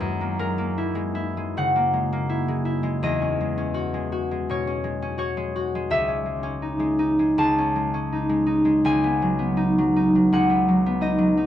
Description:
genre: classical, solo harp piece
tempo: 82 BPM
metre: 4/4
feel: rubato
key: C# dorian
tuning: A4 = 440 Hz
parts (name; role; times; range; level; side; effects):
- concert harp; solo; 0.0-11.5 s; C#2 to A5; -20 LUFS; equal; none
room: moderate studio reverb, RT60 0.8 s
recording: worn, warbling old tape, cassette tape, warbly pitch drift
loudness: -20 LUFS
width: side -11 dB against mid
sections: 0.0-11.5 A section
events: none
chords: 0.0 F#9; 3.0 E69; 5.9 C#madd9; 8.8 B69/C#

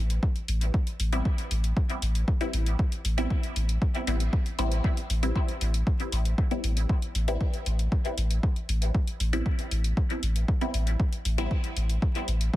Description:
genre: dub techno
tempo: 117 BPM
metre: 4/4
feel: straight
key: A minor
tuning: A4 = 440 Hz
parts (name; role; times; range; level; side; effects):
- warm sub bass; bass; 0.0-12.5 s; A1; -26 LUFS; equal; sidechain pumping
- electronic hi-hat; drums; 0.1-12.5 s; none; -36 LUFS; left 1 dB; none
- electronic kick drum; drums; 0.2-12.6 s; none; -26 LUFS; equal; none
- filtered dub chord stab; stabs; 1.1-11.5 s; G3 to E4; -34 LUFS; left 1 dB; phaser, sidechain pumping, dub echo
room: digital ambience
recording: dense, heavily limited modern master, vinyl crackle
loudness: -25 LUFS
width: side -15 dB against mid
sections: 0.0-12.6 A section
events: none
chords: 0.0 Am9

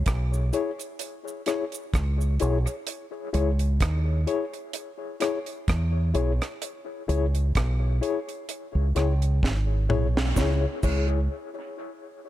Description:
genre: dub reggae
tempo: 64 BPM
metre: 4/4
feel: swing 56% on 16ths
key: C# minor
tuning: A4 = 440 Hz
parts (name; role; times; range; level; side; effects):
- deep dub fingered electric bass; bass; 0.0-11.3 s; G#1 to E2; -23 LUFS; right 1 dB; none
- deep reggae drum kit; drums; 0.1-11.1 s; crash cymbal, hi-hat, kick drum, rim click, snare drum, toms; -28 LUFS; right 1 dB; none
- cabasa; percussion; 0.1-2.9, 10.4-11.3 s; none; -41 LUFS; right 6 dB; none
- mellow reed electric piano; stabs; 0.5-11.2 s; E4 to C#5; -31 LUFS; left 6 dB; fast tremolo, dub echo
room: small room ambience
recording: echo-heavy mix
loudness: -23 LUFS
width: side -14 dB against mid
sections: 0.0-10.4 A section; 10.4-12.3 B section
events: part muted 2.9-10.4; drum fill 9.4-10.4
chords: 0.0 C#m

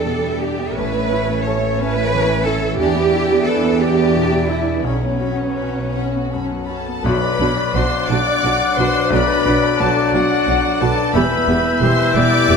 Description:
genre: cinematic, emotional film score for orchestra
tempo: 53-60 BPM (dotted quarters)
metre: 6/8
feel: rubato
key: E dorian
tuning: A4 = 438 Hz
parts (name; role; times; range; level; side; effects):
- rich symphonic violin section; melody; 0.0-12.6 s; E5 to D6; -25 LUFS; left 2 dB; none
- bright clarinet; second line; 0.0-12.6 s; C#5 to F#5; -26 LUFS; left 3 dB; none
- clear symphonic violin section; second line; 0.0-12.6 s; F#4 to E5; -27 LUFS; left 2 dB; none
- mellow hollow concert flute; second line; 0.0-12.6 s; E5 to G6; -27 LUFS; left 3 dB; none
- bright grand piano; accompaniment; 0.0-12.6 s; B1 to D5; -24 LUFS; left 4 dB; none
- rich chamber viola section; accompaniment; 0.0-12.6 s; G3 to G4; -26 LUFS; right 2 dB; none
- mellow French horn section; sustained chords; 0.0-12.6 s; E3 to E4; -25 LUFS; left 4 dB; none
- rich symphonic cello section; bass; 0.0-12.6 s; E2 to C#5; -22 LUFS; right 3 dB; none
- rich symphonic double bass section; bass; 0.0-12.6 s; E1 to E2; -22 LUFS; right 3 dB; none
- warm oboe; second line; 7.1-12.6 s; D5 to E5; -27 LUFS; left 1 dB; none
room: moderate concert hall reverb, RT60 2.2 s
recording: none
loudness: -15 LUFS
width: side -5 dB against mid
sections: 0.0-7.0 A section; 7.0-12.6 B section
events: none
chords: 0.0 Em7; 0.8 A; 2.8 Em7; 4.8 Bsus2; 7.0 Bm; 11.2 Em

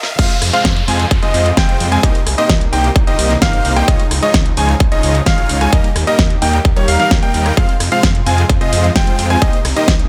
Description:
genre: EDM, festival progressive house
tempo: 130 BPM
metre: 4/4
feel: straight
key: F minor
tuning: A4 = 440 Hz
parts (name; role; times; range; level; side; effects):
- dark studio string section; sustained chords; 0.0-10.1 s; C3 to Eb6; -28 LUFS; equal; none
- pop drum kit; drums; 0.0-10.1 s; crash cymbal, hi-hat, ride cymbal, rim click, snare drum; -22 LUFS; equal; small room reverb
- riser, swell and downlifter; sound effects; 0.0-3.9 s; none; -28 LUFS; equal; none
- bright concert grand piano; arpeggios; 0.2-9.9 s; Db5 to Ab5; -21 LUFS; equal; sidechain pumping, tape echo
- dense compressed supersaw; riff; 0.2-9.9 s; G3 to Ab5; -22 LUFS; equal; sidechain pumping, tape echo
- detuned saw bass; bass; 0.2-10.1 s; Eb1 to F2; -20 LUFS; equal; chorus, sidechain pumping, high-pass filter
- electronic kick drum; drums; 0.2-10.0 s; none; -16 LUFS; equal; overdrive, high-pass filter on kick, small room reverb
room: little or no reverb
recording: high-pass filter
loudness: -13 LUFS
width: mono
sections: 0.2-10.1 A section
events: break 0.0; drum fill 0.0; riser 0.0; swell 0.0; drop 0.2-10.1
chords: 0.2 Fm; 2.0 Cm7; 3.9 Dbadd9; 5.7 Eb; 7.6 Fm; 9.4 Cm7

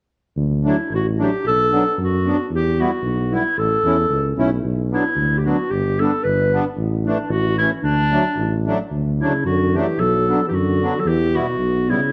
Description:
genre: alpine folk, alpine dance band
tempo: 112 BPM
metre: 2/4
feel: straight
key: D major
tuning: A4 = 440 Hz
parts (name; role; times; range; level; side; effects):
- mellow tuba; bass; 0.4-11.9 s; G1 to F#2; -24 LUFS; equal; none
- accordion; accompaniment; 0.6-12.0 s; E3 to E4; -26 LUFS; equal; light tremolo tuning
- warm clarinet; melody; 0.7-12.1 s; D4 to B4; -23 LUFS; equal; none
- dark euphonium; second line; 9.2-12.1 s; B2 to F#3; -25 LUFS; equal; none
room: moderate recital hall reverb, RT60 1.5 s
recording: dark, warm production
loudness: -19 LUFS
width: mono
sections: 0.4-8.9 A section; 8.9-12.1 A section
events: none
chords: 0.4 D; 1.4 Bm7; 2.5 Em; 3.6 A; 4.6 Bm; 5.7 G; 6.8 Asus4; 7.3 A; 7.8 D; 10.0 Bm7; 11.1 Em

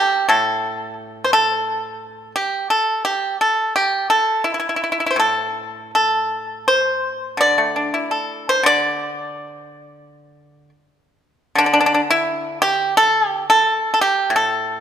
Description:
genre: chinese traditional, Chinese solo plucked strings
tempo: 79-90 BPM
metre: 4/4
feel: rubato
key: A yu mode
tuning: A4 = 440 Hz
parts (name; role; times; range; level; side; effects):
- pipa; solo; 0.0-14.8 s; A2 to D5; -16 LUFS; equal; none
room: light reverb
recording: minimal, uncompressed stereo recording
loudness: -16 LUFS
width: side -9 dB against mid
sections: 0.0-14.8 A section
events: none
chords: none

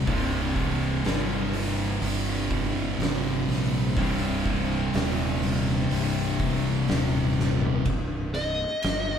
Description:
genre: stoner and doom metal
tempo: 62 BPM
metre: 4/4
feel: straight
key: C minor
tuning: A4 = 440 Hz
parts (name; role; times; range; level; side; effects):
- distorted electric guitar; riff; 0.0-7.8 s; C2 to C3; -30 LUFS; equal; overdrive
- thick fuzz guitar; riff; 0.0-7.8 s; C2 to C3; -30 LUFS; left 5 dB; distortion
- thick fuzz guitar; riff; 0.0-7.8 s; C2 to C3; -31 LUFS; right 8 dB; distortion
- fuzz fingered electric bass; bass; 0.0-9.2 s; C1 to Bb1; -29 LUFS; equal; overdrive
- oversized low-tuned drum kit; drums; 0.1-9.1 s; hi-hat, kick drum, ride cymbal, snare drum, toms; -30 LUFS; equal; none
- fuzz lead guitar; melody; 8.3-9.2 s; Eb5; -27 LUFS; left 1 dB; distortion
room: light reverb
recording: band playing live in one room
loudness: -23 LUFS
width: side -8 dB against mid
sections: 0.0-7.9 A section; 7.9-9.2 B section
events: drum fill 7.4-7.9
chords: 0.0 Cm

